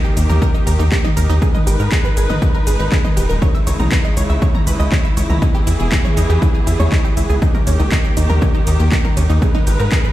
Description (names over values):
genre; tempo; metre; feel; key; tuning
melodic techno; 120 BPM; 4/4; straight; G# harmonic minor; A4 = 440 Hz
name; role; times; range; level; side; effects
rich symphonic string section; sustained chords; 0.0-10.1 s; C#3 to B4; -23 LUFS; equal; sidechain pumping
wide unison pluck; arpeggios; 0.0-10.1 s; C#4 to A#6; -24 LUFS; right 2 dB; sidechain pumping, dub echo
house drum kit; drums; 0.0-10.1 s; handclaps, hi-hat, ride cymbal, shaker, toms; -24 LUFS; equal; overdrive
tight sequencer bass; bass; 0.2-9.9 s; D#1 to G#2; -15 LUFS; equal; sidechain pumping
electronic kick drum; drums; 0.4-10.0 s; none; -16 LUFS; equal; overdrive
room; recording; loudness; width
little or no reverb; played on a big sound system in a bare room, stone room reverb; -13 LUFS; side -14 dB against mid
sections
0.0-10.1 A section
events
none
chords
0.0 D#; 1.4 G#m; 3.4 C#m7; 5.4 E6; 7.4 D#; 9.4 G#m